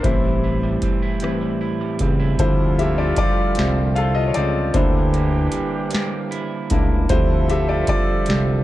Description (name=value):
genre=slow six-eight R&B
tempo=51 BPM (dotted quarters)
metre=6/8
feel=straight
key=D minor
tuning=A4 = 442 Hz
part: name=electric guitar at the edge of break-up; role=second line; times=0.0-8.6 s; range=A2 to C5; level=-26 LUFS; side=right 5 dB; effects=spring reverb
part: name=clear grand piano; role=accompaniment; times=0.0-8.6 s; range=E3 to F5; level=-22 LUFS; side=left 3 dB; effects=none
part: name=fat analog bass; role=bass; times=0.0-8.6 s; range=A1 to D2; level=-21 LUFS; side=equal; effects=none
part: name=booming analog drum machine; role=drums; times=0.0-8.5 s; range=hi-hat, kick drum, rim click, snare drum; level=-22 LUFS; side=equal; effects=none
part: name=mellow horn section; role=stabs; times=2.4-8.6 s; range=C3 to E5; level=-29 LUFS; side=right 4 dB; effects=none
room=little or no reverb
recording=dark, warm production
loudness=-17 LUFS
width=side -15 dB against mid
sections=0.0-2.4 A section; 2.4-8.6 B section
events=grand piano solo 0.0-2.4, 2.4-8.6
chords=0.0 Am7; 2.4 Dm11; 4.7 C9; 7.1 Dm11